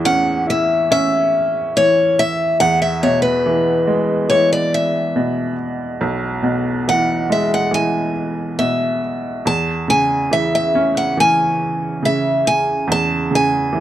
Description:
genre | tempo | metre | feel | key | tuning
acoustic folk-pop ballad | 70 BPM | 4/4 | straight | unclear | A4 = 440 Hz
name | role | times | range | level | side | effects
bright upright piano | accompaniment | 0.0-13.8 s | B1 to E4 | -19 LUFS | right 1 dB | none
picked steel-string acoustic guitar | melody | 0.1-13.8 s | B4 to A5 | -16 LUFS | left 1 dB | none
room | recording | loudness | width
light reverb | dark, warm production | -15 LUFS | side -12 dB against mid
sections
0.0-13.8 A section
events
none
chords
0.0 A; 2.6 E; 9.5 E6

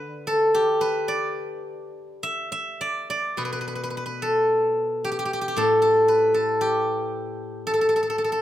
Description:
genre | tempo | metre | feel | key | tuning
chinese traditional, Chinese solo plucked strings | 51-58 BPM | 2/4 | rubato | D zhi mode | A4 = 440 Hz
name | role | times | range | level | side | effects
steel-string zither | solo | 0.0-8.4 s | A2 to E5 | -21 LUFS | equal | none
room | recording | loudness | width
little or no reverb | close, detailed microphones | -21 LUFS | side -12 dB against mid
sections
0.0-3.4 A section; 3.4-8.4 B section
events
none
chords
none

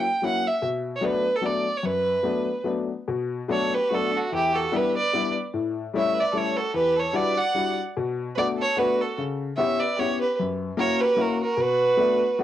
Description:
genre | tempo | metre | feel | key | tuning
musette waltz | 148 BPM | 3/4 | swing 54% on 8ths, rubato | B minor | A4 = 440 Hz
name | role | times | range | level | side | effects
rich fiddle | melody | 0.0-12.4 s | F#4 to G5 | -23 LUFS | right 2 dB | cassette tape
warm upright piano | accompaniment | 0.0-12.4 s | E2 to G4 | -27 LUFS | left 6 dB | none
clear violin | second line | 3.5-12.4 s | D4 to D5 | -34 LUFS | right 8 dB | none
room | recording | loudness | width
moderate studio reverb, RT60 0.6 s | home recording on cassette | -22 LUFS | side -12 dB against mid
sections
0.0-3.1 A section; 3.1-12.4 B section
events
none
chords
0.0 F#7; 0.6 Bm7; 4.3 Em7; 5.5 A7; 6.7 Em9; 8.0 Bm7; 9.2 C#m7b5; 10.4 F#7; 11.6 Bm7

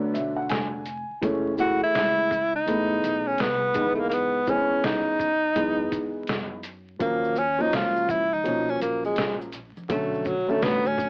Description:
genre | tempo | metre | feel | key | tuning
hip hop, jazz-hop | 83 BPM | 4/4 | swing 64% on 16ths | Eb phrygian | A4 = 439 Hz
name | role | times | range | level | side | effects
breathy tenor saxophone | melody | 0.0-11.1 s | F#3 to Gb4 | -26 LUFS | equal | cassette tape
warm upright piano | accompaniment | 0.0-11.1 s | D3 to Ab5 | -30 LUFS | equal | cassette tape
upright bass | bass | 0.0-11.1 s | F1 to Gb2 | -39 LUFS | equal | none
trip hop sampler-style drum kit | drums | 0.1-11.1 s | hi-hat, kick drum, shaker, snare drum | -34 LUFS | equal | cassette tape
maracas and congas | percussion | 7.0-11.1 s | none | -49 LUFS | equal | none
room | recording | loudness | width
moderate booth ambience, RT60 0.2 s | home recording on cassette, vinyl crackle, AM radio sound | -25 LUFS | mono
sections
0.0-7.0 A section; 7.0-11.1 B section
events
upright piano fill 0.0-1.2; tenor saxophone solo 7.0-11.1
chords
0.0 Bm7; 1.2 Gbm9; 3.8 Dbm9; 7.0 Ebm9; 9.9 Bm9

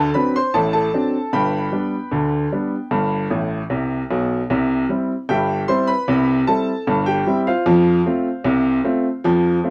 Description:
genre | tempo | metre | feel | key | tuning
ragtime piano | 76 BPM | 2/4 | straight | C major | A4 = 440 Hz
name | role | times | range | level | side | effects
bright upright piano | solo | 0.0-9.7 s | G1 to C6 | -19 LUFS | equal | none
room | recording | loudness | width
light reverb | dark, warm production | -19 LUFS | mono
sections
0.0-9.7 A section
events
upright piano fill 3.3-4.5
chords
0.0 D7; 1.3 G; 4.5 C; 7.7 F

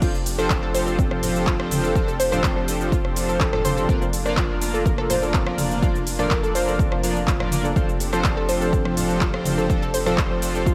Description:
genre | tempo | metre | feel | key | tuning
progressive house | 124 BPM | 4/4 | straight | F major | A4 = 440 Hz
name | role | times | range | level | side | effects
supersaw pad | sustained chords | 0.0-10.7 s | F3 to A4 | -33 LUFS | equal | sidechain pumping
analog pluck | arpeggios | 0.0-10.7 s | F3 to C5 | -29 LUFS | equal | chorus, sidechain pumping, tape echo
chorused polysynth | stabs | 0.0-10.7 s | F3 to D5 | -28 LUFS | equal | sidechain pumping, tape echo
saturated sub bass | bass | 0.0-10.7 s | F1 | -32 LUFS | equal | sidechain pumping
deep house drum kit | drums | 0.0-10.7 s | cabasa, crash cymbal, handclaps, hi-hat, rim click | -31 LUFS | equal | overdrive
electronic kick drum | drums | 0.0-10.7 s | none | -25 LUFS | equal | overdrive
congas | percussion | 1.2-10.2 s | none | -33 LUFS | equal | sidechain pumping on perc
room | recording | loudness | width
light reverb | none | -21 LUFS | mono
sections
0.0-10.7 A section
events
none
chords
0.0 F6; 3.9 Bb/F; 7.8 F6

